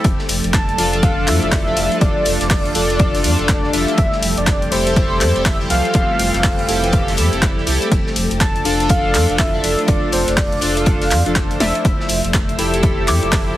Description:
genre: deep house.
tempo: 122 BPM.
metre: 4/4.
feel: swing 61% on 16ths.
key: unclear.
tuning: A4 = 441 Hz.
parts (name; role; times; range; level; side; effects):
soft string machine; sustained chords; 0.0-13.6 s; F3 to D5; -26 LUFS; equal; ensemble chorus, sidechain pumping.
sub bass with octave; bass; 0.0-13.5 s; F1 to F2; -22 LUFS; equal; none.
deep reggae drum kit; drums; 0.0-13.5 s; hi-hat, ride cymbal, snare drum; -31 LUFS; left 3 dB; none.
electronic kick drum; drums; 0.0-13.4 s; none; -18 LUFS; equal; overdrive, small room ambience.
punchy analog drum machine; drums; 0.0-13.4 s; handclaps, hi-hat, snare drum; -22 LUFS; left 1 dB; overdrive, small room ambience.
granular cloud pad; texture; 0.0-13.6 s; F3 to A5; -28 LUFS; equal; built-in reverb, sidechain pumping.
warm velvety synth lead; melody; 0.5-12.2 s; C5 to A5; -21 LUFS; equal; chorus, tremolo, cassette tape, tape echo.
chorused polysynth; stabs; 0.8-13.6 s; E3 to A4; -21 LUFS; equal; tape echo.
analog string pad; texture; 12.2-13.6 s; E5 to E6; -30 LUFS; equal; ensemble chorus, sidechain pumping.
soft synth bell; melody; 13.1-13.3 s; D6; -23 LUFS; left 1 dB; chorus.
room: light reverb.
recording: heavily compressed radio sound.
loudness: -14 LUFS.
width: side -14 dB against mid.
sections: 0.0-13.6 A section.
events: drum fill 11.6.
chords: 0.0 Dm/F; 4.0 Fmaj9; 7.9 Dm/F; 11.8 Fmaj9.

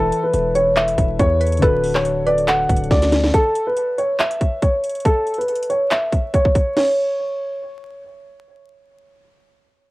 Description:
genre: hip hop, trap.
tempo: 140 BPM.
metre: 4/4.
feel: half-time.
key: unclear.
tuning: A4 = 440 Hz.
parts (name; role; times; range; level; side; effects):
dark concert grand piano; melody; 0.0-8.0 s; A4 to F#5; -18 LUFS; equal; low-pass filter, cassette tape, tape echo.
mallet-like synth pluck; second line; 0.0-2.9 s; A4 to E5; -28 LUFS; right 1 dB; chorus, phaser, cassette tape, tape echo.
soft electric-piano-like synth keys; accompaniment; 0.0-3.4 s; D3 to B4; -25 LUFS; left 4 dB; chorus, cassette tape.
hard-hitting 808-style bass; bass; 0.0-3.3 s; D1 to E2; -22 LUFS; equal; none.
trap drum kit; drums; 0.1-6.9 s; crash cymbal, handclaps, hi-hat, kick drum, rim click, snare drum; -20 LUFS; equal; overdrive, cassette tape.
room: moderate booth ambience, RT60 0.2 s.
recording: home recording on cassette, vinyl crackle.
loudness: -16 LUFS.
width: side -19 dB against mid.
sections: 0.0-3.3 A section; 3.3-6.8 B section; 6.8-9.9 C section.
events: drum fill 2.9-3.3.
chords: 0.0 Esus4; 1.6 D; 3.3 N.C..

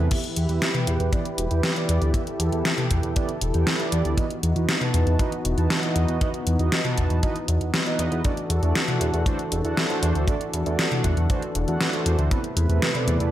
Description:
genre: synthwave.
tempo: 118 BPM.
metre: 4/4.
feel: straight.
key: E minor.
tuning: A4 = 439 Hz.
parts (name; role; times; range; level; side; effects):
brassy analog pad; sustained chords; 0.0-13.3 s; C3 to B4; -28 LUFS; left 1 dB; chorus, vintage 12-bit sampler grit, sidechain pumping.
mellow synth brass; stabs; 0.0-13.3 s; E3 to A5; -29 LUFS; right 4 dB; chorus, digital delay.
chorused synth bass; bass; 0.0-13.3 s; E1 to E2; -22 LUFS; equal; sidechain pumping.
kick drum; drums; 0.1-12.4 s; none; -27 LUFS; equal; none.
pop drum kit; drums; 0.1-13.3 s; crash cymbal, hi-hat, snare drum, toms; -25 LUFS; left 1 dB; overdrive, gated reverb.
room: light reverb.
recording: none.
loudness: -21 LUFS.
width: side -12 dB against mid.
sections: 0.0-13.3 A section.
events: none.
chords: 0.1 Em; 4.2 B/E; 8.2 D/E; 12.3 Amadd9/E.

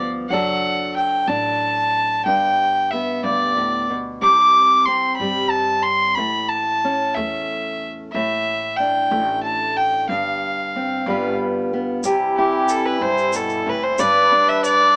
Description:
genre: acoustic folk duo or small band.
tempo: 61 BPM (dotted quarters).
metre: 6/8.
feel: straight.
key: C major.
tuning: A4 = 440 Hz.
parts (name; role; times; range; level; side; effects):
warm fiddle; melody; 0.0-15.0 s; G4 to D6; -17 LUFS; equal; none.
fingerpicked steel-string acoustic guitar; accompaniment; 0.0-15.0 s; G2 to B4; -23 LUFS; equal; none.
upright bass; bass; 0.0-14.3 s; F#1 to G2; -35 LUFS; equal; none.
hand-pumped harmonium; sustained chords; 12.0-15.0 s; E3 to B4; -26 LUFS; equal; none.
tube shaker; percussion; 12.0-14.8 s; none; -32 LUFS; right 1 dB; none.
room: moderate small room reverb, RT60 0.5 s.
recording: band playing live in one room, small speaker sound.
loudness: -16 LUFS.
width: side -35 dB against mid.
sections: 0.0-12.0 A section; 12.0-15.0 B section.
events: fiddle solo 12.0-15.0.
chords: 0.3 D/F#; 2.3 G; 4.2 C5; 6.2 A; 8.1 Dsus2/A; 10.1 G7sus4; 11.1 G7; 12.0 C; 14.0 G.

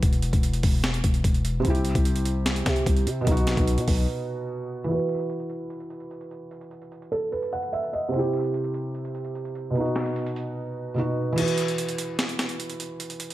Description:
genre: hip hop, trap.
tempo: 148 BPM.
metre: 4/4.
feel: half-time.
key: E harmonic minor.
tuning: A4 = 440 Hz.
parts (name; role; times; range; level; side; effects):
felt-muted upright piano; accompaniment; 0.0-13.3 s; B2 to F#5; -27 LUFS; right 1 dB; none.
growling 808-style bass; bass; 0.0-4.1 s; E1 to C3; -25 LUFS; left 1 dB; none.
breakbeat sampler-style drum kit; drums; 0.0-13.3 s; crash cymbal, hi-hat, kick drum, snare drum; -25 LUFS; equal; none.
room: little or no reverb.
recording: low-pass filter.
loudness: -23 LUFS.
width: side -15 dB against mid.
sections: 0.0-4.9 A section; 4.9-11.4 B section; 11.4-13.3 C section.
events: break 4.1-4.9; filter sweep 4.9-11.4; kick muted 11.4-13.3.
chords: 0.0 Esus2; 1.6 C; 3.3 B; 4.9 Esus2; 8.1 C; 9.8 B; 11.4 Esus2.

